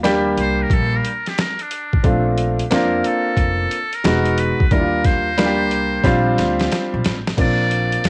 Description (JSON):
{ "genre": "hip hop, jazz-hop", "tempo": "90 BPM", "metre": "4/4", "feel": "swing 66% on 16ths", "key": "Bb major", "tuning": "A4 = 443 Hz", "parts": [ { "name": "warm baby grand piano", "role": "accompaniment", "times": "0.0-8.1 s", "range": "G3 to G4", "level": "-21 LUFS", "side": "equal", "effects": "cassette tape" }, { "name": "upright bass", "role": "bass", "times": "0.0-8.1 s", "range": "E1 to F2", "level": "-25 LUFS", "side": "equal", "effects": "none" }, { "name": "boom bap sampler-style drum kit", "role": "drums", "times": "0.0-8.1 s", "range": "crash cymbal, hi-hat, kick drum, snare drum", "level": "-23 LUFS", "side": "equal", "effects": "cassette tape" }, { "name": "trumpet with metal mute", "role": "melody", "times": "0.4-8.1 s", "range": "D4 to D5", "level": "-26 LUFS", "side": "equal", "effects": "cassette tape, tape echo" } ], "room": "light reverb", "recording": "home recording on cassette", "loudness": "-18 LUFS", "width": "mono", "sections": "0.0-7.4 A section", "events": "muted trumpet solo 0.0-7.4; drum fill 6.0-7.4", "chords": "0.0 Ebmaj7; 2.0 Bbmaj7; 4.0 Emaj7; 4.7 Ebmaj7; 6.0 Bb6; 7.4 Bb", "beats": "0.04 0.71 1.38 | 2.04 2.71 3.38 4.04 | 4.71 5.38 6.04 6.71 | 7.38 8.04" }